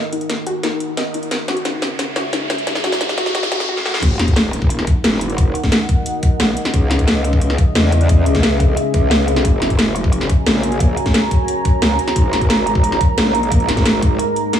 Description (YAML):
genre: dark technical drum and bass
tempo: 177 BPM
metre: 4/4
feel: straight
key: Eb phrygian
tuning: A4 = 440 Hz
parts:
  - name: deep dark ambient pad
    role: sustained chords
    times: 0.0-14.6 s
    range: Ab3 to Bb5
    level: -21 LUFS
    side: right 1 dB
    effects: chorus, built-in reverb, sidechain pumping
  - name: soft round pluck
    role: arpeggios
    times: 0.0-4.0 s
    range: Eb4 to Eb5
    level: -24 LUFS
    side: left 3 dB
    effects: lush chorus, sidechain pumping, digital delay
  - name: riser and sub drop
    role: sound effects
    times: 1.4-5.4 s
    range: none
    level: -25 LUFS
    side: equal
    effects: none
  - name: drum and bass drum kit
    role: drums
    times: 0.1-14.6 s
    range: crash cymbal, hi-hat, snare drum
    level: -19 LUFS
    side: equal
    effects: high-pass filter on hats, high-pass filter on snare, high-pass filter on toms, high-pass filter on cymbals, high-pass filter on room
  - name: growl bass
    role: bass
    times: 4.0-14.2 s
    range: Eb1 to Fb2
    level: -18 LUFS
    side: equal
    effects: chorus, tube saturation, sidechain pumping
  - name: electronic kick drum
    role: drums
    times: 4.0-14.1 s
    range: none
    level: -16 LUFS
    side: equal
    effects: none
room: light reverb, digital ambience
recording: high-pass filter, small room ambience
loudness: -14 LUFS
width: side -9 dB against mid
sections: 0.0-4.0 A section; 4.0-14.6 B section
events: build-up 0.0-4.0; drum fill 0.0-3.7, 3.8; filter sweep 0.0-4.0; riser 1.4-3.7; drop 4.0-14.6; impact 4.0-5.4; break 14.2-14.6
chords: 0.0 Ebm; 1.3 Dbm; 4.0 Ebm; 6.7 Dbm; 9.4 Gb; 12.2 Absus2